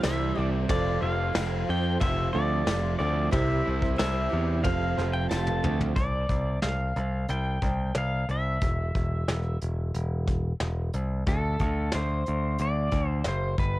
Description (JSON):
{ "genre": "folk rock and heartland rock", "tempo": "91 BPM", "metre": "4/4", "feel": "straight", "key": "unclear", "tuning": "A4 = 440 Hz", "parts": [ { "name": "pedal steel guitar", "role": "melody", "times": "0.0-13.8 s", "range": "A4 to A5", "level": "-32 LUFS", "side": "equal", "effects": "cassette tape, tape echo" }, { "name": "barky reed electric piano", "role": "accompaniment", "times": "0.0-5.9 s", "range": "E4 to C5", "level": "-36 LUFS", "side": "right 7 dB", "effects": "overdrive, cassette tape" }, { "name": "picked twelve-string acoustic guitar", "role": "accompaniment", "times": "0.0-6.0 s", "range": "C3 to A4", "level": "-36 LUFS", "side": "left 9 dB", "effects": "cassette tape" }, { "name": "mellow tonewheel organ", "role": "sustained chords", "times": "0.0-6.0 s", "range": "C4 to C5", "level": "-37 LUFS", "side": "left 1 dB", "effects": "none" }, { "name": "overdriven semi-hollow guitar", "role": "riff", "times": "0.0-6.0 s", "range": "F2 to F4", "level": "-33 LUFS", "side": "right 7 dB", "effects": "cassette tape" }, { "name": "modern bright picked electric bass", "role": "bass", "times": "0.0-13.8 s", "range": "E1 to F2", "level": "-28 LUFS", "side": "equal", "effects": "none" }, { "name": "soft brush drum kit", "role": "drums", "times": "0.0-13.7 s", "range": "hi-hat, kick drum, ride cymbal, snare drum, toms", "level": "-31 LUFS", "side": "equal", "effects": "cassette tape" }, { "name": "tambourine", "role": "percussion", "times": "0.0-5.5 s", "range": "none", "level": "-49 LUFS", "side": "left 12 dB", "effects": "none" } ], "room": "little or no reverb", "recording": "home recording on cassette", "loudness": "-25 LUFS", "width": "side -16 dB against mid", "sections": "0.0-6.0 A section; 6.0-13.8 B section", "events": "drum fill 5.3-6.0", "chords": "0.0 C; 0.7 F; 3.3 C; 4.6 F; 6.0 Csus2; 8.6 N.C.; 11.3 D5" }